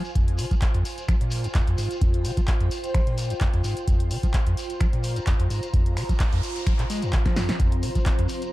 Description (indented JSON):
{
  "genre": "acid house",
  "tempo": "129 BPM",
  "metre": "4/4",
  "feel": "swing 54% on 16ths",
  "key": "F minor",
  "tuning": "A4 = 442 Hz",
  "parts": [
    { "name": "overdriven acid bass", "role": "riff", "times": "0.0-8.3 s", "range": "F2 to Ab3", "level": "-26 LUFS", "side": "equal", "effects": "distortion, analog chorus, cassette tape" },
    { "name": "shekere", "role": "percussion", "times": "0.0-8.5 s", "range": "none", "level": "-40 LUFS", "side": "left 2 dB", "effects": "none" },
    { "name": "granular cloud pad", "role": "texture", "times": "0.0-8.5 s", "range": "F4 to Bb5", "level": "-34 LUFS", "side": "right 1 dB", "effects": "built-in reverb, sidechain pumping" },
    { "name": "electronic kick drum", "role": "drums", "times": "0.2-8.2 s", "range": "none", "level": "-22 LUFS", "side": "equal", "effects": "none" },
    { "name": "punchy analog drum machine", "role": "drums", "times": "0.2-8.5 s", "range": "finger snaps, handclaps, hi-hat, snare drum", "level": "-33 LUFS", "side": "equal", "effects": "none" },
    { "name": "breathy mellow concert flute", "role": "melody", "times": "2.8-3.2 s", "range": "C5", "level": "-34 LUFS", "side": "left 1 dB", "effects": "ping-pong delay" },
    { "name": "noise sweep", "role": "sound effects", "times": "5.9-7.6 s", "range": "none", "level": "-39 LUFS", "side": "right 1 dB", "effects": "none" },
    { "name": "string machine, full ensemble", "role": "sustained chords", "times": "7.6-8.5 s", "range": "C4 to C5", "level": "-32 LUFS", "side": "left 1 dB", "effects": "ensemble chorus, sidechain pumping" }
  ],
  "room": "little or no reverb",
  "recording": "dark, warm production",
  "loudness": "-21 LUFS",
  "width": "side -17 dB against mid",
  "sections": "0.0-8.5 A section",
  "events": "noise sweep 5.9-7.6; drum fill 7.2-7.6",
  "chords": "0.0 F5",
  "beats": "| 0.15 0.62 1.08 1.55 | 2.02 2.48 2.94 3.41 | 3.88 4.34 4.81 5.27 | 5.74 6.20 6.67 7.13 | 7.60 8.06"
}